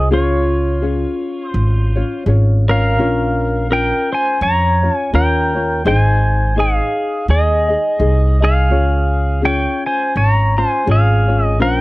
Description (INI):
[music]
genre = Hawaiian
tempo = 84 BPM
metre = 4/4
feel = swing 58% on 8ths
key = unclear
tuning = A4 = 442 Hz
[part]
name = pedal steel guitar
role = melody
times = 0.0-11.8 s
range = F4 to Bb5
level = -17 LUFS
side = equal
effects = none
[part]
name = ukulele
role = accompaniment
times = 0.0-11.8 s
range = Db4 to Eb5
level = -22 LUFS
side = left 3 dB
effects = none
[part]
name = upright bass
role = bass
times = 0.0-11.8 s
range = Ab1 to F2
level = -15 LUFS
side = equal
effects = none
[sound]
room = little or no reverb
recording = dry, close 1970s-style studio recording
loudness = -13 LUFS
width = side -19 dB against mid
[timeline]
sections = 0.0-11.8 A section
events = none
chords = 0.1 Db; 3.0 Bbm; 5.8 Ab; 8.7 Db